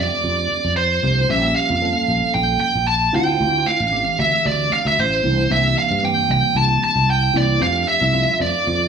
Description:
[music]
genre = electric jazz fusion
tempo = 114 BPM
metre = 4/4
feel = straight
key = F major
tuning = A4 = 440 Hz
[part]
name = bluesy overdriven lead guitar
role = melody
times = 0.0-8.9 s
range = C5 to A5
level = -17 LUFS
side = right 2 dB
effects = distortion
[part]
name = tine electric piano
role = accompaniment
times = 0.0-8.9 s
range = E3 to A4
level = -25 LUFS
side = left 1 dB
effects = medium stereo tremolo, phaser
[part]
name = sustaining fretless electric bass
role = bass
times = 0.0-8.9 s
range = A1 to G2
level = -21 LUFS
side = right 1 dB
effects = none
[sound]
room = moderate stone room reverb, RT60 1.1 s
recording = band playing live in one room, small room ambience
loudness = -15 LUFS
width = side -6 dB against mid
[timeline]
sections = 0.0-8.9 A section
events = none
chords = 0.0 F69; 1.3 Bbm6; 3.1 Dm9; 5.5 C9; 7.6 F69

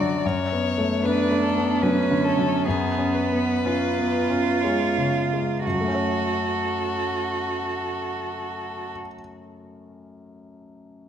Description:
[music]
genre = classical, slow romantic movement for piano quintet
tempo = 55-79 BPM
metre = 3/4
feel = rubato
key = F# minor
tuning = A4 = 440 Hz
[part]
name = rich violin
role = melody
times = 0.0-8.9 s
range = G#4 to D5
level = -30 LUFS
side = left 7 dB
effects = none
[part]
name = clear cello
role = second line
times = 0.0-8.9 s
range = B3 to F#4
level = -25 LUFS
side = right 5 dB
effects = none
[part]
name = clear grand piano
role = accompaniment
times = 0.0-11.1 s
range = F#2 to C#5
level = -25 LUFS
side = left 1 dB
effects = none
[sound]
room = wet scoring stage reverb, RT60 1.9 s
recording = none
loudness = -21 LUFS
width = side -9 dB against mid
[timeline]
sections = 0.0-5.6 A section; 5.6-8.6 B section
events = slowing down 0.0-5.6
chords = 0.2 Bm/F#; 2.6 C#7/F#; 5.6 F#m

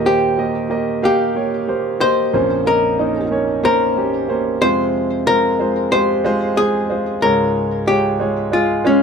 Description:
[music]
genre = pop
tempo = 92 BPM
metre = 4/4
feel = swing 56% on 16ths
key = unclear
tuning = A4 = 439 Hz
[part]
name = clear grand piano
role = accompaniment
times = 0.0-9.0 s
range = Bb1 to F5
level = -18 LUFS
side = right 2 dB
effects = none
[part]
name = archtop guitar, miked and amplified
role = melody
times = 0.1-9.0 s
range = Db4 to C5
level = -18 LUFS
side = left 2 dB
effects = none
[sound]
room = studio reverb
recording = dry, close 1970s-style studio recording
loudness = -15 LUFS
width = side -6 dB against mid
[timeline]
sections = 0.0-9.0 A section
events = none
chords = 0.0 Eb; 2.3 Bbmadd9; 4.6 Fm; 7.2 Db

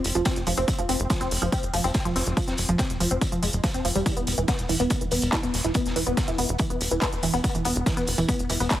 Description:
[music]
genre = driving peak-time techno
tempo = 142 BPM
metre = 4/4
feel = straight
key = unclear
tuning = A4 = 440 Hz
[part]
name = tight sequencer bass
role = bass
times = 0.0-8.7 s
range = E1 to F1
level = -29 LUFS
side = equal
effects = sidechain pumping
[part]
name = raw garage drum kit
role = drums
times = 0.0-8.8 s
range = hi-hat, snare drum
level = -35 LUFS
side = right 1 dB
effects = sidechain pumping on hats, high-pass filter on hats, high-pass filter on snare, high-pass filter on room
[part]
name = techno drum kit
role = drums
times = 0.0-8.8 s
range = handclaps, hi-hat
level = -30 LUFS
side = equal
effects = overdrive
[part]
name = resonant blip pluck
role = riff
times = 0.2-8.7 s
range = E3 to C4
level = -26 LUFS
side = equal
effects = phaser, tube saturation, sidechain pumping, digital delay
[part]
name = electronic kick drum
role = drums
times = 0.3-8.8 s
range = none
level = -27 LUFS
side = equal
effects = overdrive
[sound]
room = light reverb, small room ambience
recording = heavily compressed radio sound, multiband compression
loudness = -22 LUFS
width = side -13 dB against mid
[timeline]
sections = 0.0-8.8 A section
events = none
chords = 0.0 F5; 4.1 E5

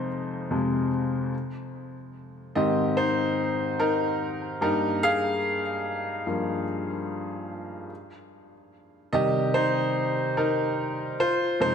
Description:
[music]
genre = pop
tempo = 73 BPM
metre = 4/4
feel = straight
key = C minor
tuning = A4 = 438 Hz
[part]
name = bright baby grand piano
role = solo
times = 0.0-11.7 s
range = F2 to F5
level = -24 LUFS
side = left 1 dB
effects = ping-pong delay
[sound]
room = moderate recital hall reverb, RT60 1.5 s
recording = none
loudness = -24 LUFS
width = side -7 dB against mid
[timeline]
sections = 0.0-11.7 A section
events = grand piano solo 0.0-11.7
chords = 0.0 Fm; 1.3 Ab; 4.6 Ebadd9/G; 7.9 Cm; 11.2 Fm

